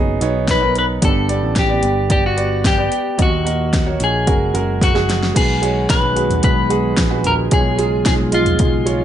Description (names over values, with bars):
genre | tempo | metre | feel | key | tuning
piano-driven pop | 111 BPM | 4/4 | straight | unclear | A4 = 440 Hz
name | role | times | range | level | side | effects
clean electric guitar | melody | 0.0-9.0 s | E#4 to B4 | -20 LUFS | left 2 dB | lush chorus
clear concert grand piano | accompaniment | 0.0-9.0 s | G2 to D#5 | -21 LUFS | right 6 dB | none
picked electric bass | bass | 0.0-9.0 s | F#1 to D#2 | -20 LUFS | equal | none
deep house drum kit | drums | 0.2-9.0 s | crash cymbal, hi-hat, kick drum, snare drum, toms | -18 LUFS | equal | none
airy breathy pad | sustained chords | 5.4-9.0 s | C#3 to G#4 | -25 LUFS | left 1 dB | chorus
room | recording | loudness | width
light reverb, digital ambience | nothing above 10.5 kHz | -14 LUFS | side -10 dB against mid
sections
0.0-5.4 A section; 5.4-9.0 B section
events
drum fill 4.8-5.4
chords
0.0 Badd9; 1.0 G; 3.2 D#m; 4.3 F#add9; 5.4 G#m7/B; 7.5 C#/B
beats
0.48 | 1.03 1.57 2.11 2.65 | 3.19 3.73 4.27 4.81 | 5.36 5.89 6.44 6.98 | 7.52 8.06 8.60